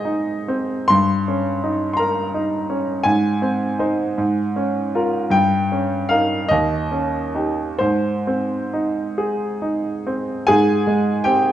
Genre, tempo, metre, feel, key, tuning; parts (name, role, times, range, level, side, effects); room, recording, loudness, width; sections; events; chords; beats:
classical, romantic character piece for solo piano; 43-57 BPM (dotted quarters); 6/8; rubato; Ab major; A4 = 440 Hz
clear grand piano; solo; 0.0-11.5 s; Eb2 to C6; -18 LUFS; equal
moderate recital hall reverb, RT60 1.5 s; dark, warm production, nothing above 10.4 kHz; -18 LUFS; side -12 dB against mid
0.0-10.5 A section; 10.5-11.5 B section
0.0 Ab; 0.9 Eb7/G; 3.1 Ab; 4.2 Bbm7/Ab; 5.3 Eb7/G; 6.5 Eb7; 7.8 Ab
| 0.90 1.99 | 3.06 4.20 | 5.34 6.51 | 7.81 9.17 | 10.48